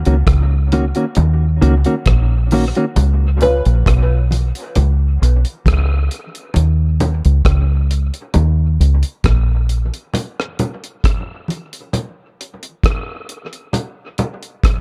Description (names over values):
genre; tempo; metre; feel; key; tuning
dub reggae; 67 BPM; 4/4; straight; Eb minor; A4 = 440 Hz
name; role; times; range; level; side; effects
deep dub fingered electric bass; bass; 0.0-9.9 s; Bb1 to Eb2; -16 LUFS; equal; none
mellow electric guitar; accompaniment; 0.1-2.8 s; Eb3 to Gb4; -22 LUFS; equal; dub echo
deep reggae drum kit; drums; 0.1-14.8 s; hi-hat, kick drum, rim click; -21 LUFS; equal; none
congas; percussion; 1.2-14.4 s; none; -25 LUFS; equal; dub echo
filtered dub chord stab; stabs; 3.4-3.6 s; Db4 to Cb5; -22 LUFS; equal; phaser, dub echo
room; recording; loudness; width
small room ambience; dark, warm production; -16 LUFS; mono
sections
0.0-14.8 A section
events
break 0.0-3.0, 3.0-14.8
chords
0.0 Ebm7; 3.0 Db7(no3); 6.6 Eb5; 10.1 N.C.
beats
0.27 1.17 2.06 | 2.96 3.86 4.76 5.65 | 6.55 7.45 8.35 9.25 | 10.14 11.04 11.94 12.84 | 13.74 14.64